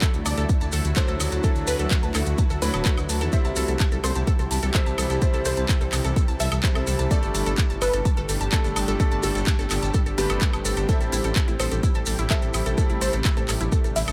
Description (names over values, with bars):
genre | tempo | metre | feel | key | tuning
progressive house | 127 BPM | 4/4 | straight | A dorian | A4 = 440 Hz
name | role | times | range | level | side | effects
unison pluck | melody | 0.0-14.1 s | G4 to F#5 | -34 LUFS | equal | subtle chorus, sidechain pumping, diffuse ambient delay
shimmering ambient pad | sustained chords | 0.0-14.1 s | A2 to A4 | -34 LUFS | equal | chorus, built-in reverb, sidechain pumping
glassy wavetable pluck | arpeggios | 0.0-14.1 s | E4 to A5 | -35 LUFS | equal | chorus, sidechain pumping, diffuse ambient delay
bright grand piano | stabs | 0.0-14.1 s | F#3 to C5 | -33 LUFS | equal | sidechain pumping, diffuse ambient delay
electronic kick drum | drums | 0.0-13.8 s | none | -24 LUFS | equal | none
house drum kit | drums | 0.0-14.1 s | handclaps, hi-hat, woodblock | -32 LUFS | equal | sidechain pumping on hats, sidechain pumping on perc
maracas | percussion | 0.0-14.1 s | none | -37 LUFS | equal | none
dark detuned saw bass | bass | 0.1-14.1 s | D1 to E2 | -29 LUFS | equal | sidechain pumping
room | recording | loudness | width
light reverb | none | -23 LUFS | mono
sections
0.0-14.1 A section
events
none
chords
0.0 Dadd9; 3.3 C; 7.1 Gsus2; 10.9 Am7